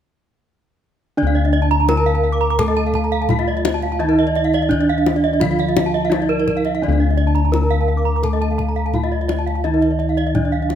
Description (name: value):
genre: Balinese gamelan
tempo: 85 BPM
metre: 4/4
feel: straight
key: D pelog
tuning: A4 = 440 Hz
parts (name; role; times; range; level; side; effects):
- gamelan-type bronze metallophone; melody; 1.2-10.8 s; D4 to Bb4; -21 LUFS; right 2 dB; none
- gamelan-type bronze metallophone; accompaniment; 1.2-10.8 s; D3 to A3; -25 LUFS; right 4 dB; none
- gamelan-type bronze metallophone; arpeggios; 1.2-10.7 s; Bb4 to D6; -25 LUFS; left 6 dB; none
- gamelan-type bossed gongs; bass; 1.2-10.8 s; D2 to Eb4+35c; -20 LUFS; left 2 dB; none
- gamelan-type bronze metallophone; arpeggios; 1.4-10.8 s; Bb4 to Bb5; -24 LUFS; right 7 dB; none
- kendang; percussion; 1.5-10.8 s; none; -24 LUFS; left 4 dB; none
room: light reverb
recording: close, detailed microphones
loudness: -15 LUFS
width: side -9 dB against mid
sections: 1.2-10.8 A section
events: none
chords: none